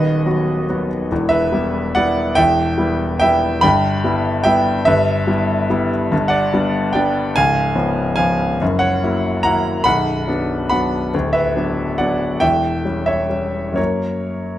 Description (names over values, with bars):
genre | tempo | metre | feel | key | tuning
classical, piano waltz | 122-155 BPM | 3/4 | rubato | E minor, B minor from 6.1 s | A4 = 440 Hz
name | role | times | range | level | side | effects
clear grand piano | solo | 0.0-14.6 s | B0 to B5 | -15 LUFS | equal | none
room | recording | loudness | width
moderate recital hall reverb, RT60 1.5 s | close, detailed microphones | -15 LUFS | side -13 dB against mid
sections
0.0-14.6 A section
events
none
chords
0.0 B/D#; 1.1 Em; 3.6 Em/G; 6.1 G; 7.4 C#7; 8.6 F#7; 9.9 Bm; 11.1 Bm/D; 12.4 C#dim/E; 13.8 F#